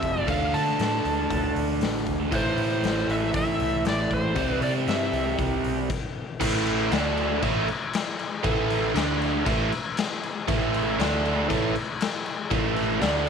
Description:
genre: blues rock power trio and southern rock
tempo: 118 BPM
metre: 4/4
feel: straight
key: A minor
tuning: A4 = 440 Hz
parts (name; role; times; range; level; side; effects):
- overdriven slide guitar; melody; 0.0-5.4 s; C5 to A5; -29 LUFS; equal; none
- biting overdriven guitar; riff; 0.0-13.3 s; F2 to D4; -26 LUFS; right 2 dB; none
- vintage muted fingered electric bass; bass; 0.0-13.3 s; F1 to D3; -31 LUFS; right 1 dB; none
- raw garage drum kit; drums; 0.0-13.3 s; crash cymbal, hi-hat, kick drum, snare drum; -28 LUFS; left 4 dB; none
room: moderate echo chamber reverb, RT60 2.2 s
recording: 1960s-style stereo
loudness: -23 LUFS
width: side -6 dB against mid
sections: 0.0-6.4 A section; 6.4-13.3 B section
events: stop 5.9-6.4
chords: 0.3 D5; 2.3 Am; 4.4 C; 6.4 A5; 6.9 D5; 7.4 A5; 9.0 D5; 9.5 A5; 11.0 D5; 11.5 A5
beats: | 0.28 0.79 1.30 1.81 | 2.32 2.83 3.34 3.85 | 4.36 4.88 5.39 5.90 | 6.41 6.92 7.43 7.94 | 8.45 8.96 9.47 9.97 | 10.48 10.99 11.50 12.01 | 12.51 13.02

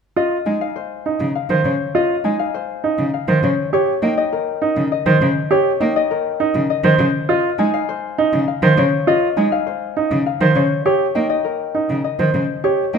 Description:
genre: classical, minimalist pattern music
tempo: 101 BPM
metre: 3/4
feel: straight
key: Db lydian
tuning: A4 = 440 Hz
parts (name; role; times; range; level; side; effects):
- concert harp; melody; 0.2-13.0 s; Bb4 to Ab5; -21 LUFS; left 10 dB; none
- warm grand piano; arpeggios; 0.2-13.0 s; Eb4 to C5; -19 LUFS; right 6 dB; none
- rich cello; accompaniment; 0.5-13.0 s; Db3 to Bb3; -19 LUFS; equal; none
room: wet large studio reverb, RT60 1.3 s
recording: dark, warm production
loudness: -15 LUFS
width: side -6 dB against mid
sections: 0.2-13.0 A section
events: none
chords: 0.2 Dbmaj7; 3.7 Eb7; 7.3 Dbmaj7; 10.9 Eb7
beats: | 0.16 0.76 1.35 | 1.95 2.54 3.13 | 3.73 4.32 4.92 | 5.51 6.10 6.70 | 7.29 7.89 8.48 | 9.07 9.67 10.26 | 10.86 11.45 12.04 | 12.64

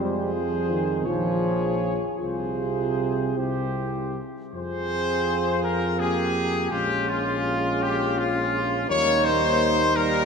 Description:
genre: classical, hymn-like piece for brass band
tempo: 50-57 BPM (dotted quarters)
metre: 6/8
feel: rubato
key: F minor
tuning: A4 = 440 Hz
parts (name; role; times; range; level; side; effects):
- clear trumpet section; melody; 0.0-10.2 s; F4 to Db5; -26 LUFS; left 4 dB; none
- warm flugelhorn; second line; 0.0-10.2 s; Eb4 to Ab4; -29 LUFS; right 5 dB; none
- mellow trombone; accompaniment; 0.0-10.2 s; C3 to C4; -30 LUFS; right 2 dB; none
- warm euphonium; accompaniment; 0.0-10.2 s; Bb3 to F4; -31 LUFS; left 1 dB; none
- dark tuba; bass; 0.0-10.2 s; Bb1 to F2; -30 LUFS; equal; none
room: wet church reverb, RT60 3.4 s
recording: minimal, uncompressed stereo recording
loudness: -22 LUFS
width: side -5 dB against mid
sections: 0.0-4.5 A section; 4.5-10.2 B section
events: none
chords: 0.0 Fm; 1.1 Bbm7; 2.2 Fm/C; 3.4 C; 4.5 Fm; 6.7 Bbm7; 8.9 Eb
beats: 1.06 | 2.21 3.37 | 4.54 5.63 | 6.72 7.82 | 8.89 9.96

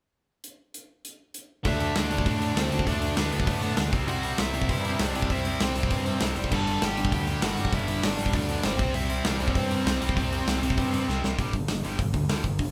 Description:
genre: punk rock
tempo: 197 BPM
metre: 4/4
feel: straight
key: unclear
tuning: A4 = 440 Hz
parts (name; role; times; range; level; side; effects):
- big rock drum kit; drums; 0.4-12.7 s; crash cymbal, hi-hat, kick drum, snare drum; -30 LUFS; equal; none
- distorted electric guitar; riff; 1.6-11.2 s; G2 to D4; -36 LUFS; equal; overdrive
- growling picked electric bass; bass; 1.6-12.7 s; F#1 to A2; -34 LUFS; equal; overdrive
- high-gain lead guitar; melody; 1.7-11.0 s; B3 to A5; -34 LUFS; equal; distortion
- sludgy distorted guitar; riff; 1.7-12.7 s; G2 to D4; -33 LUFS; equal; overdrive
room: light reverb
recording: band playing live in one room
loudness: -26 LUFS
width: mono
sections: 0.4-1.7 A section; 1.7-11.4 B section; 11.4-12.7 C section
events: drum fill 11.1-11.4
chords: 0.4 N.C.; 1.7 D5; 3.9 C; 6.5 G5; 8.8 C; 11.4 G5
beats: | 0.44 0.74 1.05 1.35 | 1.65 1.96 2.26 2.56 | 2.87 3.17 3.48 3.78 | 4.08 4.39 4.69 4.99 | 5.30 5.60 5.91 6.21 | 6.51 6.82 7.12 7.43 | 7.73 8.04 8.34 8.64 | 8.95 9.25 9.56 9.86 | 10.16 10.47 10.77 11.08 | 11.38 11.69 11.99 12.29 | 12.60

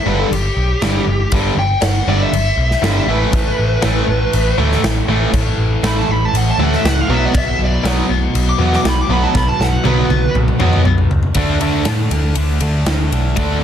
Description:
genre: hard rock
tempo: 120 BPM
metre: 4/4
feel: straight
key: B minor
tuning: A4 = 440 Hz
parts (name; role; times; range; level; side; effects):
- smooth overdriven lead guitar; melody; 0.0-10.3 s; G4 to D6; -20 LUFS; equal; slapback echo
- heavy high-gain guitar; riff; 0.1-13.6 s; G2 to D4; -21 LUFS; left 9 dB; distortion
- tight distorted guitar; riff; 0.1-13.6 s; G2 to D4; -21 LUFS; right 11 dB; distortion
- overdriven picked electric bass; bass; 0.1-13.6 s; G1 to A2; -17 LUFS; equal; none
- big rock drum kit; drums; 0.3-13.5 s; crash cymbal, kick drum, ride cymbal, snare drum, toms; -19 LUFS; equal; soft clipping on snare
- distorted electric guitar; riff; 3.3-13.6 s; A2 to D4; -23 LUFS; equal; distortion
room: light reverb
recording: dense, heavily limited modern master, lossy compression artefacts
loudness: -13 LUFS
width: side -9 dB against mid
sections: 0.0-11.4 A section; 11.4-13.6 B section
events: lead electric guitar solo 0.0-11.4; drum fill 9.3-11.4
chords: 0.0 G5; 3.1 Asus2; 7.1 B5; 11.4 D5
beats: 0.32 0.82 | 1.32 1.83 2.33 2.83 | 3.33 3.83 4.34 4.84 | 5.34 5.84 6.34 6.84 | 7.34 7.84 8.34 8.85 | 9.35 9.85 10.35 10.85 | 11.36 11.86 12.36 12.87 | 13.37

